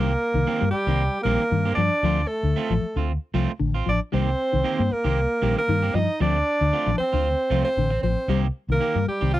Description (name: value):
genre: afrobeat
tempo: 115 BPM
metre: 4/4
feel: swing 55% on 16ths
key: C dorian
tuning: A4 = 441 Hz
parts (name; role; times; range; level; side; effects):
- bright alto saxophone; melody; 0.0-9.4 s; F4 to Eb5; -25 LUFS; equal; none
- clear trombone; second line; 0.0-9.4 s; F3 to Eb4; -29 LUFS; right 3 dB; none
- mellow electric guitar; arpeggios; 0.0-9.4 s; D3 to Bb3; -27 LUFS; left 6 dB; phaser
- electric guitar at the edge of break-up; stabs; 0.0-9.4 s; Eb3 to G4; -30 LUFS; right 7 dB; none
- mellow fretless electric bass; bass; 0.0-9.4 s; A1 to G2; -24 LUFS; equal; lush chorus
room: little or no reverb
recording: dry, close 1970s-style studio recording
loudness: -20 LUFS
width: side -14 dB against mid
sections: 0.0-9.4 A section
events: none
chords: 0.0 Cm7; 2.0 Dm7; 4.1 Cm7; 6.2 Dm7; 8.3 Cm7